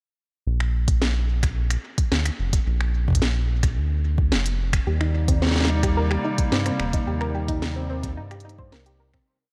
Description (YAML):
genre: IDM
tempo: 109 BPM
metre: 4/4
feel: straight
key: Eb major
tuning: A4 = 443 Hz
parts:
  - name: round analog bass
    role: bass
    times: 0.5-9.2 s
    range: Eb1 to G2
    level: -26 LUFS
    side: equal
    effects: none
  - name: organic electronic drum kit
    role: drums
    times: 0.6-9.2 s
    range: finger snaps, hi-hat, snare drum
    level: -30 LUFS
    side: equal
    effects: studio reverb, tape echo
  - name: electronic kick drum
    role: drums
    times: 0.9-9.2 s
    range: none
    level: -25 LUFS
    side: equal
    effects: studio reverb
  - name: warbly tape-like pad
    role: sustained chords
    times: 5.1-9.2 s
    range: C3 to Eb4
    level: -32 LUFS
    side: equal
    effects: chorus, built-in reverb, phaser
  - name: soft round pluck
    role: arpeggios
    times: 4.9-9.2 s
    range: C4 to C5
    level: -32 LUFS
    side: equal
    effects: chorus, diffuse ambient delay
  - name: bubbling stepped-filter texture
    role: texture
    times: 4.9-9.3 s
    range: D5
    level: -40 LUFS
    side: equal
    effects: chorus, built-in reverb
room: light reverb, digital ambience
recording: none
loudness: -23 LUFS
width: mono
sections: 0.5-9.3 groove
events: fade-out 6.3-9.3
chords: 0.5 Bb; 4.9 Eb6